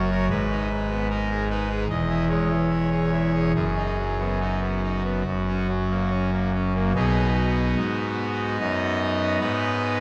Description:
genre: classical, chorale-style piece for pipe organ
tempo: 70-76 BPM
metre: 4/4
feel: rubato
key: B major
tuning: A4 = 441 Hz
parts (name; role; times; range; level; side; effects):
- pipe organ, trumpet; solo; 0.0-10.0 s; E1 to D#5; -24 LUFS; equal; none
room: wet church reverb, RT60 3.2 s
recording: dark, warm production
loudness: -24 LUFS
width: mono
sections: 0.0-7.0 A section; 7.0-10.0 B section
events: none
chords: 0.3 G#m; 1.9 C#m/E; 3.6 B/F#; 5.3 F#; 7.0 B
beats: | 0.32 1.11 1.91 2.72 | 3.57 4.42 5.27 6.12 | 6.97 7.78 8.61 9.41

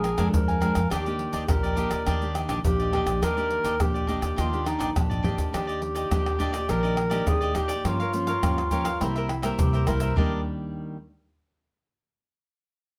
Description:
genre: samba and choro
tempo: 104 BPM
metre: 4/4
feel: straight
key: Eb major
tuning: A4 = 440 Hz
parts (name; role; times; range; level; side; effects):
- dark clarinet; second line; 0.0-10.4 s; D4 to Bb4; -31 LUFS; equal; none
- cavaquinho; accompaniment; 0.0-10.4 s; D4 to Ab5; -35 LUFS; equal; none
- nylon-string guitar; accompaniment; 0.0-11.0 s; F2 to G4; -34 LUFS; equal; none
- upright bass; bass; 0.0-10.4 s; Bb1 to Eb3; -32 LUFS; equal; none
- egg shaker, pandeiro, tamborim and surdo; percussion; 0.0-10.3 s; none; -30 LUFS; equal; none
room: moderate studio reverb, RT60 0.6 s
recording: none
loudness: -26 LUFS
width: mono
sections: 0.0-5.5 A section; 5.5-10.2 B section; 10.2-12.5 C section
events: drum fill 5.0-5.5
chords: 0.0 Bb7; 0.9 Ebmaj7; 7.8 Gm7b5; 9.0 C7; 10.2 Ebmaj7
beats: 0.34 | 0.91 1.49 2.07 2.65 | 3.23 3.80 4.38 4.96 | 5.54 6.12 6.69 7.27 | 7.85 8.43 9.01 9.59 | 10.16 10.74

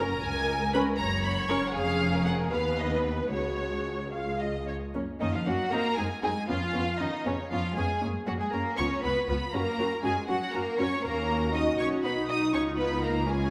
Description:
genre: quick classical-period movement for string orchestra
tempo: 79 BPM (dotted quarters)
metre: 6/8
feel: rubato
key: F# major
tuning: A4 = 440 Hz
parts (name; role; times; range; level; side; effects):
- rich symphonic violin section; melody; 0.0-13.5 s; B4 to D#6; -36 LUFS; equal; none
- warm symphonic violin section; second line; 0.0-13.5 s; C#4 to E#5; -35 LUFS; equal; none
- dark studio viola section; accompaniment; 0.0-13.5 s; G#3 to B4; -34 LUFS; equal; none
- rich symphonic double bass section; bass; 0.0-13.5 s; E#1 to F#2; -38 LUFS; equal; none
- warm symphonic cello section; bass; 0.0-13.5 s; C#2 to D#4; -36 LUFS; equal; none
room: wet concert hall reverb, RT60 2.0 s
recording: none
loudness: -29 LUFS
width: mono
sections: 0.0-4.9 A section; 4.9-13.5 B section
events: none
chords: 0.2 C#5; 1.0 F#; 1.8 C#/E#; 2.5 B/D#; 3.3 C#sus4; 4.1 C#; 4.9 F#; 5.7 G#7; 6.5 C#7/E#; 8.0 F#; 8.8 C#7; 9.5 F#; 11.0 D#m7; 11.8 B; 12.5 C#9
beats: | 0.23 0.99 | 1.75 2.53 | 3.33 4.14 | 4.95 5.72 | 6.49 7.26 | 8.02 8.78 | 9.54 10.29 | 11.04 11.79 | 12.53 13.28

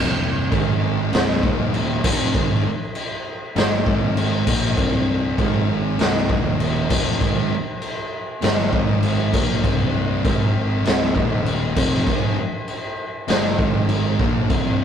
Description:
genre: stoner and doom metal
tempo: 99 BPM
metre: 4/4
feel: straight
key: C minor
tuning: A4 = 440 Hz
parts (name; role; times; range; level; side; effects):
- thick fuzz guitar; riff; 0.0-14.8 s; C2 to Bb3; -25 LUFS; left 2 dB; distortion
- thick fuzz guitar; riff; 0.0-14.8 s; C2 to Bb3; -26 LUFS; right 4 dB; distortion
- modern bright picked electric bass; bass; 0.0-14.8 s; C1 to Bb1; -26 LUFS; right 1 dB; overdrive
- raw garage drum kit; drums; 0.5-14.6 s; crash cymbal, kick drum, snare drum; -20 LUFS; equal; none
room: moderate small room reverb, RT60 0.5 s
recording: rough rehearsal-room recording, tube saturation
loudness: -18 LUFS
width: side -8 dB against mid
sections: 0.0-14.8 A section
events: none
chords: 0.0 C5; 0.5 Ab5; 1.1 C5; 1.4 Eb5; 2.0 Cm; 3.9 Ab5; 4.5 C5; 5.4 Ab5; 6.0 C5; 6.3 Eb5; 6.9 Cm; 8.7 Ab5; 9.3 C5; 10.2 Ab5; 10.9 C5; 11.2 Eb5; 11.8 Cm; 13.6 Ab5; 14.2 C5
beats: 0.52 1.13 1.74 | 2.34 2.95 3.56 4.17 | 4.78 5.38 5.99 6.60 | 7.21 7.81 8.42 9.03 | 9.64 10.24 10.85 11.46 | 12.07 12.68 13.28 13.89 | 14.50

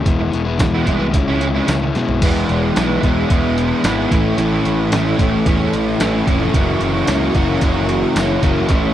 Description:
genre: indie rock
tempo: 111 BPM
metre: 4/4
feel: straight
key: E major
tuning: A4 = 437 Hz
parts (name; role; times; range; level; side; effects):
- crunchy overdriven guitar; riff; 0.0-8.9 s; F#2 to E4; -19 LUFS; left 5 dB; none
- fuzz picked electric bass; bass; 0.0-8.9 s; E1 to B2; -22 LUFS; right 1 dB; overdrive
- trip hop sampler-style drum kit; drums; 0.1-8.8 s; crash cymbal, hi-hat, kick drum, snare drum, tambourine, toms; -19 LUFS; equal; none
- fuzz guitar; riff; 0.2-8.9 s; A2 to F#4; -20 LUFS; right 6 dB; distortion, ensemble chorus, slapback echo
- string machine, violins; sustained chords; 2.2-8.9 s; E4 to D#6; -30 LUFS; equal; ensemble chorus
room: little or no reverb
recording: dry, close 1970s-style studio recording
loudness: -14 LUFS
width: side -11 dB against mid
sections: 0.0-2.2 A section; 2.2-8.9 B section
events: drum fill 2.0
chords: 0.1 E; 1.1 C#m7; 2.2 Emaj7; 4.1 Amaj7; 6.5 F#7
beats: | 0.06 0.60 1.14 1.68 | 2.22 2.76 3.30 3.84 | 4.38 4.92 5.46 6.00 | 6.54 7.08 7.62 8.16 | 8.70

